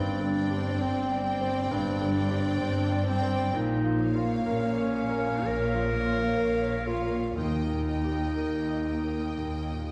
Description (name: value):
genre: cinematic, emotional film score for orchestra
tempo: 59-67 BPM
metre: 4/4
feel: rubato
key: Eb major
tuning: A4 = 439 Hz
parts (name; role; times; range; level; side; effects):
- rich studio violin section; melody; 0.0-9.9 s; F5 to G5; -40 LUFS; equal; none
- clear clarinet; second line; 0.0-9.9 s; C4 to Bb4; -32 LUFS; equal; none
- clear studio violin section; second line; 0.0-9.9 s; Db5 to Eb5; -43 LUFS; equal; none
- clear concert grand piano; accompaniment; 0.0-9.9 s; Eb2 to Eb5; -36 LUFS; equal; none
- rich studio viola section; accompaniment; 0.0-9.9 s; Bb3 to C4; -38 LUFS; equal; none
- clear studio cello section; bass; 0.0-9.9 s; Eb2 to Bb2; -36 LUFS; equal; none
- rich studio double bass section; bass; 0.0-9.9 s; G1 to Eb2; -36 LUFS; equal; none
- timpani; percussion; 7.4-8.8 s; Eb3; -40 LUFS; equal; none
room: wet scoring stage reverb, RT60 1.6 s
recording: heard from further back in the room, vinyl crackle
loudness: -28 LUFS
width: mono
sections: 0.0-9.9 A section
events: none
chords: 0.0 Gsus4; 3.5 Bbm; 7.4 Eb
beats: 0.80 1.71 2.61 | 3.54 4.46 5.44 6.38 | 7.37 8.37 9.38